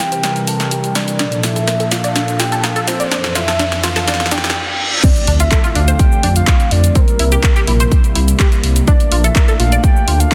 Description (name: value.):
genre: progressive house.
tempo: 125 BPM.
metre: 4/4.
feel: straight.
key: D minor.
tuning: A4 = 443 Hz.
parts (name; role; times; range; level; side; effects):
soft octave-layered synth lead; melody; 0.0-10.3 s; Bb4 to A5; -23 LUFS; equal; chorus, sidechain pumping, digital delay.
warm analog pad; sustained chords; 0.0-10.3 s; F2 to Bb4; -24 LUFS; equal; chorus, sidechain pumping.
tight sequenced synth; arpeggios; 0.0-10.3 s; C4 to D5; -26 LUFS; equal; chorus, sidechain pumping, digital delay.
house drum kit; drums; 0.0-10.3 s; crash cymbal, handclaps, hi-hat, shaker, snare drum; -22 LUFS; equal; sidechain pumping on hats, high-pass filter on hats, studio reverb, high-pass filter on snare, sidechain pumping on perc, high-pass filter on perc, sidechain pumping on cymbals, high-pass filter on cymbals.
riser, reverse cymbal and impact; sound effects; 1.9-7.0 s; none; -27 LUFS; equal; none.
electronic kick drum; drums; 5.0-10.3 s; none; -14 LUFS; equal; studio reverb.
dark detuned saw bass; bass; 5.3-10.3 s; Bb1 to F2; -16 LUFS; equal; sidechain pumping.
room: light reverb.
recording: dense, heavily limited modern master.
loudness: -14 LUFS.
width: mono.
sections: 0.0-5.0 A section; 5.0-10.3 B section.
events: build-up 0.0-5.0; drum fill 0.0-4.6; filter sweep on synth arpeggio sound 0.0-5.0; filter sweep on soft synth lead 0.0-5.0; reverse cymbal 4.1-5.0; drop 5.0-10.3; impact 5.0-7.0.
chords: 0.0 C7; 1.2 Bbmaj7; 3.1 Fmaj7; 5.0 Dm7; 7.0 C7; 8.9 Bbmaj7.